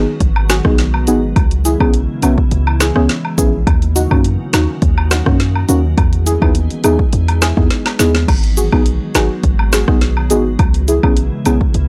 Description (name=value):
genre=dancehall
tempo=104 BPM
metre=4/4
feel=straight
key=G# minor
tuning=A4 = 440 Hz
part: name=deep mellow chord stab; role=accompaniment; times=0.0-11.6 s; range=A#3 to G#4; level=-19 LUFS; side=equal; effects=chorus
part: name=glassy FM pad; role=sustained chords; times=0.0-11.9 s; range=C#3 to G#4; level=-27 LUFS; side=equal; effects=ensemble chorus, built-in reverb, sidechain pumping
part: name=hard-hitting 808-style bass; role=bass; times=0.0-11.9 s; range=G#1 to F#2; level=-18 LUFS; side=equal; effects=none
part: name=afro-pop drum kit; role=drums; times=0.2-11.9 s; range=crash cymbal, hi-hat, kick drum, rim click, snare drum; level=-18 LUFS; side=equal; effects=none
part: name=woodblock and cabasa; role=percussion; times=0.4-11.6 s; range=none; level=-25 LUFS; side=equal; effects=none
room=little or no reverb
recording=dry, gritty hardware recording, transformer saturation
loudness=-14 LUFS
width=mono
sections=0.0-11.9 A section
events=drum fill 7.7-8.3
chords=0.0 G#m7; 1.4 C#m7; 3.7 D#m7; 6.0 Emaj7; 8.3 G#m7; 10.6 C#m7